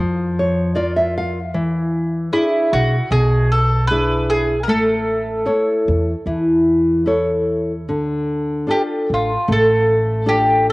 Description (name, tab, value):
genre	italian folk, Italian serenade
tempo	76 BPM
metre	4/4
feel	rubato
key	D harmonic minor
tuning	A4 = 442 Hz
part	nylon-string guitar	accompaniment	0.0-10.7 s	B2 to F5	-18 LUFS	left 1 dB	cassette tape
part	upright bass	bass	0.0-10.7 s	A1 to F2	-22 LUFS	equal	transformer saturation
part	mandolin	melody	2.3-10.7 s	E4 to B4	-18 LUFS	equal	none
room	moderate spring reverb, RT60 2.9 s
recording	home recording on cassette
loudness	-15 LUFS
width	side -21 dB against mid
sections	0.0-10.7 A section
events	nylon-string guitar fill 0.0-1.5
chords	0.0 Bb; 1.5 E7; 4.7 A; 7.9 Dm